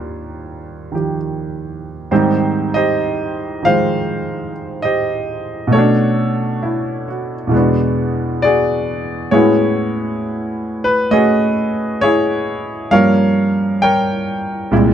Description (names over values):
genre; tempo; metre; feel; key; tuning
solo jazz; 67 BPM; 4/4; swing 69% on 8ths; unclear; A4 = 440 Hz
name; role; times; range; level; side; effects
clear concert grand piano; solo; 0.0-14.9 s; C2 to G5; -15 LUFS; equal; none
room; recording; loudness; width
light reverb; none; -14 LUFS; side -9 dB against mid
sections
0.0-2.1 A section; 2.1-14.9 B section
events
none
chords
0.0 Ebmaj9; 2.1 Abmaj7; 5.7 Bm9; 7.5 E13; 9.3 Amaj13; 12.9 Gm7b5